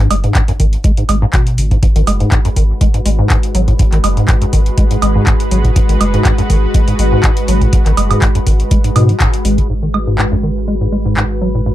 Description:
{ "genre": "acid house", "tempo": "122 BPM", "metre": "4/4", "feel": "swing 54% on 16ths", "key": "G# minor", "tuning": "A4 = 440 Hz", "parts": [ { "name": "acid bass, square", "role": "riff", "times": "0.0-11.7 s", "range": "F#2 to G#3", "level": "-16 LUFS", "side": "equal", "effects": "tube saturation, wide subtle chorus, sidechain pumping, dub echo" }, { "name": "saturated sub bass", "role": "bass", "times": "0.0-11.7 s", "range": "F#1 to G#2", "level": "-15 LUFS", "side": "equal", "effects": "sidechain pumping" }, { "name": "booming analog drum machine", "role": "drums", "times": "0.1-11.3 s", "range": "handclaps, hi-hat, woodblock", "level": "-20 LUFS", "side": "right 2 dB", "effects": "none" }, { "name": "electronic kick drum", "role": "drums", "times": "0.4-9.7 s", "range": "none", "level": "-13 LUFS", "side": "equal", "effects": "none" }, { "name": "lush unison pad", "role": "sustained chords", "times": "1.8-11.7 s", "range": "G#3 to B4", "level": "-20 LUFS", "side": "equal", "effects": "chorus, sidechain pumping" } ], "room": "light reverb", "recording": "dark, warm production", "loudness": "-10 LUFS", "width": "side -14 dB against mid", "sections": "0.0-9.7 A section; 9.7-11.7 B section", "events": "band accent 9.2; filter sweep on analog synth pad 9.7-11.7", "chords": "0.0 G#m7", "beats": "0.35 0.84 1.33 | 1.83 2.32 2.81 3.30 | 3.79 4.29 4.78 5.27 | 5.76 6.25 6.75 7.24 | 7.73 8.22 8.71 9.20 | 9.70 10.19 10.68 11.17 | 11.66" }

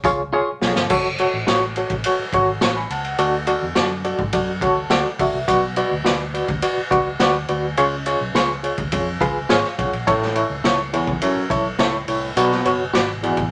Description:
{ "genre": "uptempo 1960s-style soul", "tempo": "105 BPM", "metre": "4/4", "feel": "straight", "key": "F# minor", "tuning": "A4 = 442 Hz", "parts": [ { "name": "reed electric piano", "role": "accompaniment", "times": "0.0-13.4 s", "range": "A2 to C#6", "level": "-23 LUFS", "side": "equal", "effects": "fast tremolo" }, { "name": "vintage muted fingered electric bass", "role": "bass", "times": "0.0-13.5 s", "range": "F#1 to G#2", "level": "-32 LUFS", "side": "equal", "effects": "tube saturation" }, { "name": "raw garage drum kit", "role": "drums", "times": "0.0-13.5 s", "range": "crash cymbal, hi-hat, kick drum, ride cymbal, snare drum", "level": "-25 LUFS", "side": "equal", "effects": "none" }, { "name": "clean electric guitar", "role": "stabs", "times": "0.3-13.1 s", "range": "E4 to D5", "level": "-25 LUFS", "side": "equal", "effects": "none" }, { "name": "growling baritone saxophone", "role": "riff", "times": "0.6-0.8, 10.1-13.5 s", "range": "E2 to B2", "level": "-26 LUFS", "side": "equal", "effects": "none" } ], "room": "moderate studio ambience, RT60 0.4 s", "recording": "none", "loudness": "-20 LUFS", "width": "mono", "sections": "0.9-13.5 A section", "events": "drum fill 0.3-0.9; reed electric piano fill 4.3-5.5, 8.9-10.1", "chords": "0.0 C#; 0.9 F#m; 3.2 D; 5.5 Bm; 7.8 C#; 10.1 A; 12.4 Bm", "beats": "0.33 | 0.91 1.48 2.05 2.62 | 3.19 3.77 4.34 4.91 | 5.48 6.06 6.63 7.20 | 7.78 8.35 8.93 9.50 | 10.07 10.65 11.22 11.80 | 12.38 12.95" }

